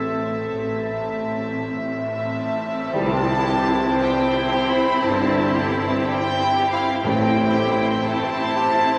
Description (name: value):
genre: classical, slow romantic movement for symphony orchestra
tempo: 46-60 BPM (dotted quarters)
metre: 12/8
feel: rubato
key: C major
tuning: A4 = 441 Hz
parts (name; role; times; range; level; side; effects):
- warm symphonic violin section; melody; 0.0-9.0 s; E5 to B5; -27 LUFS; equal; none
- dark clarinet; second line; 0.0-1.6 s; A4; -33 LUFS; equal; none
- warm symphonic violin section; second line; 0.0-9.0 s; G3 to E5; -27 LUFS; equal; none
- dark symphonic viola section; accompaniment; 0.0-9.0 s; C4 to E4; -29 LUFS; equal; none
- warm symphonic cello section; bass; 0.0-7.9 s; G2 to C3; -33 LUFS; equal; none
- warm symphonic double bass section; bass; 0.0-7.9 s; G1 to C2; -32 LUFS; equal; none
- mellow tuba; bass; 2.9-7.9 s; G1 to C2; -32 LUFS; equal; none
- tam-tam; percussion; 2.9-5.7 s; none; -34 LUFS; equal; none
- timpani; percussion; 7.0-8.0 s; none; barely audible; none; none
room: wet cathedral reverb, RT60 5.0 s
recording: none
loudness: -21 LUFS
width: mono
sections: 0.0-2.9 A section; 2.9-9.0 B section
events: band accent 2.9-3.7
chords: 0.0 Am; 2.9 C; 7.0 Am7